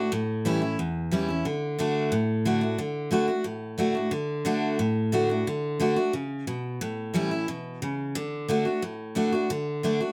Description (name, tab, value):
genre	rock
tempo	179 BPM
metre	4/4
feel	straight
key	D major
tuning	A4 = 440 Hz
part	picked steel-string acoustic guitar	solo	0.0-10.1 s	E2 to F#4	-27 LUFS	equal	none
room	moderate studio reverb, RT60 0.6 s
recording	none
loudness	-27 LUFS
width	mono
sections	0.0-2.8 A section; 2.8-10.1 B section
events	none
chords	0.1 A7; 1.4 D; 6.8 A7; 8.2 D